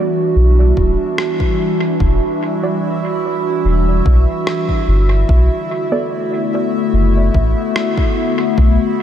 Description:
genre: ambient dub.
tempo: 73 BPM.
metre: 4/4.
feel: swing 53% on 16ths.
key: E minor.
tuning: A4 = 438 Hz.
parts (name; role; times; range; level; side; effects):
warbly tape-like pad; sustained chords; 0.0-9.0 s; D3 to F#4; -17 LUFS; equal; chorus, built-in reverb, phaser.
bubbling stepped-filter texture; texture; 0.0-9.0 s; E4 to E5; -24 LUFS; equal; chorus, built-in reverb.
soft dub sub bass; bass; 0.4-8.8 s; D1 to B1; -12 LUFS; equal; none.
electronic kick drum; drums; 0.8-8.8 s; none; -18 LUFS; equal; studio reverb.
electronic rim click; drums; 1.2-7.9 s; none; -26 LUFS; equal; overdrive, studio reverb, dub echo.
filtered dub chord stab; stabs; 2.6-6.1 s; G3 to D5; -26 LUFS; right 3 dB; chorus, dub echo.
room: moderate huge ambient reverb, RT60 4.0 s.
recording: dreamy mix soaked in reverb.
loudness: -13 LUFS.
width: side -10 dB against mid.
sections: 0.0-9.0 A section.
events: none.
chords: 0.0 Em9; 5.3 Bm7.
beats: 0.36 1.18 | 2.00 2.82 3.65 4.47 | 5.29 6.11 6.93 7.75 | 8.58.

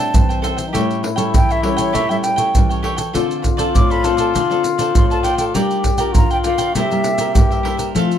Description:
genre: samba and choro.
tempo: 100 BPM.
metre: 4/4.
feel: straight.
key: A minor.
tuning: A4 = 440 Hz.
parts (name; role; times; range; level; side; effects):
breathy concert flute; melody; 0.0-7.6 s; C#5 to D6; -21 LUFS; right 2 dB; none.
clear trombone; second line; 0.0-8.2 s; C4 to G4; -21 LUFS; left 6 dB; none.
cavaquinho; accompaniment; 0.0-8.2 s; E4 to G5; -24 LUFS; right 4 dB; none.
nylon-string guitar; accompaniment; 0.0-8.2 s; G2 to Bb4; -22 LUFS; left 2 dB; none.
maracas, surdo and pandeiro; percussion; 0.1-8.2 s; none; -17 LUFS; right 1 dB; none.
room: light reverb.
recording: close, detailed microphones.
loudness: -14 LUFS.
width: side -9 dB against mid.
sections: 0.0-8.2 A section.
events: none.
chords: 0.0 Am7; 0.7 A7; 3.1 Dm7; 5.6 Gm7; 6.8 C7.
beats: 0.14 | 0.74 1.35 1.95 2.55 | 3.15 3.75 4.35 4.95 | 5.55 6.15 6.75 7.35 | 7.95.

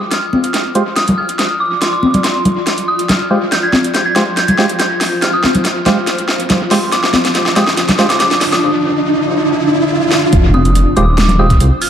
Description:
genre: deep dubstep.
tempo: 141 BPM.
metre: 4/4.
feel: half-time.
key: F dorian.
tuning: A4 = 441 Hz.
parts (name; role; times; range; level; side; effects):
dark detuned synth bell; melody; 0.0-11.9 s; C6 to Ab6; -18 LUFS; equal; chorus, dub echo.
granular cloud pad; sustained chords; 0.0-11.9 s; D4 to D5; -19 LUFS; equal; built-in reverb.
dubstep drum kit; drums; 0.1-11.9 s; hi-hat, snare drum; -18 LUFS; equal; high-pass filter on hats, high-pass filter on snare, dub echo.
congas; percussion; 0.3-8.0, 10.5-11.4 s; none; -16 LUFS; left 1 dB; dub echo.
percussive organ stab; stabs; 0.8-8.1, 11.0-11.5 s; Ab3 to C5; -18 LUFS; right 2 dB; chorus, dub echo.
riser and impact; sound effects; 6.2-11.9 s; none; -20 LUFS; equal; none.
dark detuned saw bass; bass; 10.3-11.7 s; Eb1 to C2; -11 LUFS; equal; none.
electronic kick drum; drums; 10.3-11.6 s; none; -12 LUFS; equal; none.
room: wet spring reverb, RT60 1.6 s.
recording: echo-heavy mix, vinyl crackle.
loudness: -11 LUFS.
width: side -9 dB against mid.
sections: 0.0-10.3 A section; 10.3-11.9 B section.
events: build-up 0.0-10.3; drum fill 0.0-8.6, 10.1; filter sweep on synth stab 0.0-10.3; filter sweep on ambient pad 0.0-10.3; riser 6.2-10.3; drop 10.3-11.9; impact 10.3-11.9.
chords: 0.0 Fmadd9.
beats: | 0.11 0.54 0.96 1.39 | 1.82 2.24 2.67 3.09 | 3.52 3.94 4.37 4.79 | 5.22 5.65 6.07 6.50 | 6.92 7.35 7.77 8.20 | 8.62 9.05 9.48 9.90 | 10.33 10.75 11.18 11.60.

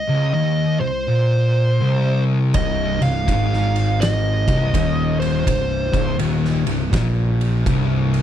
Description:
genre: stoner and doom metal.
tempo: 82 BPM.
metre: 4/4.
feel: swing 64% on 8ths.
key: C minor.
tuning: A4 = 440 Hz.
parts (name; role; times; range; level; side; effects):
fuzz lead guitar; melody; 0.0-6.2 s; C5 to F5; -24 LUFS; right 1 dB; distortion, slapback echo.
thick fuzz guitar; riff; 0.1-8.2 s; C2 to Bb2; -21 LUFS; left 6 dB; distortion.
thick fuzz guitar; riff; 0.1-8.2 s; C2 to Bb2; -22 LUFS; right 6 dB; distortion.
fuzz picked electric bass; bass; 2.5-8.2 s; C1 to Bb1; -24 LUFS; right 1 dB; overdrive.
oversized low-tuned drum kit; drums; 2.5-8.2 s; kick drum, ride cymbal, snare drum; -24 LUFS; right 1 dB; none.
room: studio ambience.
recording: none.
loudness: -16 LUFS.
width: side -10 dB against mid.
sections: 0.0-8.2 A section.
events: none.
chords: 0.0 Cm.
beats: 0.35 1.08 1.81 | 2.54 3.27 4.00 4.74 | 5.47 6.20 6.93 7.66.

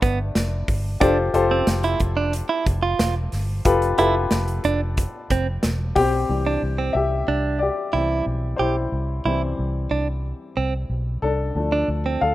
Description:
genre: piano-driven pop.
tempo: 91 BPM.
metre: 4/4.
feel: straight.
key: C major.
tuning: A4 = 441 Hz.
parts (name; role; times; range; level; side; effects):
warm upright piano; accompaniment; 0.0-12.3 s; G2 to F5; -23 LUFS; left 3 dB; none.
direct-recorded clean electric guitar; riff; 0.0-12.2 s; B3 to G4; -24 LUFS; right 5 dB; none.
vintage muted fingered electric bass; bass; 0.0-12.3 s; E1 to D2; -24 LUFS; equal; none.
modern studio drum kit; drums; 0.0-6.1 s; hi-hat, kick drum, snare drum; -24 LUFS; equal; none.
room: light reverb, studio reverb.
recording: rough home demo mix.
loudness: -20 LUFS.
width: side -15 dB against mid.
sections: 0.0-6.3 A section; 6.3-12.3 B section.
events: upright piano solo 6.3-12.3.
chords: 0.0 G; 1.0 Fadd9; 6.3 C; 11.6 Dm.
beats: 0.36 | 1.02 1.68 2.33 3.00 | 3.65 4.31 4.97 5.63 | 6.29 6.95 7.61 8.27 | 8.93 9.59 10.25 10.91 | 11.57 12.23.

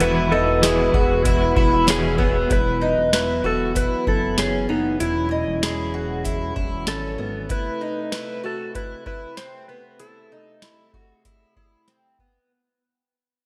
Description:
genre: dream pop.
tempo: 96 BPM.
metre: 4/4.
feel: straight.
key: unclear.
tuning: A4 = 440 Hz.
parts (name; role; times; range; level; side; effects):
clean lap steel guitar; melody; 0.0-11.8 s; D#4 to C5; -28 LUFS; equal; delay, slapback echo.
semi-hollow electric guitar; accompaniment; 0.0-2.5 s; E2 to F#4; -28 LUFS; equal; tremolo, ensemble chorus, slapback echo.
mellow French horn section; sustained chords; 0.0-12.5 s; C3 to B4; -29 LUFS; equal; none.
fingerpicked twelve-string acoustic guitar; arpeggios; 0.0-12.5 s; B3 to D#5; -27 LUFS; equal; subtle chorus, delay, slapback echo.
chorused synth bass; bass; 0.0-7.5 s; E1 to G#1; -29 LUFS; equal; none.
booming analog drum machine; drums; 0.0-12.4 s; hi-hat, kick drum, snare drum, tambourine; -25 LUFS; equal; none.
room: moderate concert hall reverb, RT60 2.3 s.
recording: big arena sound.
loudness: -21 LUFS.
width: mono.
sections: 0.0-2.5 A section; 2.5-12.5 B section.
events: fade-out 2.5-12.5.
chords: 0.0 Eadd9; 7.5 Amadd9.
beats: | 0.00 0.62 1.25 1.88 | 2.50 3.12 3.75 4.38 | 5.00 5.62 6.25 6.88 | 7.50 8.12 8.75 9.38 | 10.00 10.62 11.25 11.88.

